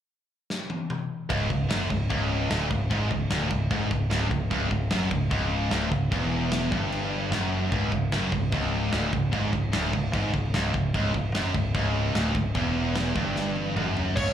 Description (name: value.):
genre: heavy metal.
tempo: 150 BPM.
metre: 4/4.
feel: straight.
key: C# phrygian.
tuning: A4 = 440 Hz.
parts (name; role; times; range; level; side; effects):
big rock drum kit; drums; 0.5-14.3 s; crash cymbal, kick drum, snare drum, toms; -30 LUFS; equal; none.
distorted electric guitar; riff; 1.3-14.2 s; C#2 to G#2; -34 LUFS; left 1 dB; distortion, slapback echo.
tight distorted guitar; riff; 1.3-14.3 s; C#2 to G#2; -32 LUFS; left 9 dB; distortion, slapback echo.
tight distorted guitar; riff; 1.3-14.3 s; C#2 to G#2; -30 LUFS; right 8 dB; distortion, slapback echo.
growling picked electric bass; bass; 1.3-14.3 s; C#1 to G#1; -29 LUFS; equal; overdrive.
high-gain lead guitar; melody; 14.2-14.3 s; C#5; -26 LUFS; right 2 dB; distortion.
room: light reverb.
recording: live gig heard through the venue's PA, club reverb.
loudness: -24 LUFS.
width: side -10 dB against mid.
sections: 0.0-1.3 A section; 1.3-14.2 B section.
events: drum fill 0.5-1.3, 13.4-14.2.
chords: 0.0 N.C.; 1.3 C#m.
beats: 0.10 0.50 0.90 | 1.30 1.70 2.10 2.50 | 2.91 3.31 3.71 4.11 | 4.51 4.91 5.32 5.72 | 6.12 6.52 6.92 7.32 | 7.72 8.12 8.52 8.93 | 9.33 9.73 10.13 10.53 | 10.94 11.34 11.74 12.15 | 12.55 12.96 13.36 13.76 | 14.17.